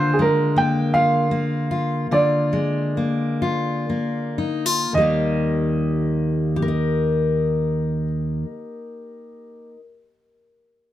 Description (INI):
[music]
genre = acoustic folk-pop ballad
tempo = 36-55 BPM (dotted quarters)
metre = 6/8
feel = straight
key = Eb major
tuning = A4 = 441 Hz
[part]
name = clear upright piano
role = melody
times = 0.0-8.0 s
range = Ab4 to G5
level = -22 LUFS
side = right 2 dB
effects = plate reverb
[part]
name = fingerpicked steel-string acoustic guitar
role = accompaniment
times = 0.0-9.8 s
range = Eb2 to Eb5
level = -20 LUFS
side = left 1 dB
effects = none
[sound]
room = light reverb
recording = none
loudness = -19 LUFS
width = side -12 dB against mid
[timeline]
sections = 0.0-4.9 A section; 4.9-10.9 B section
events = slowing down 0.0-4.9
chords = 0.0 Bb7/D; 4.9 Eb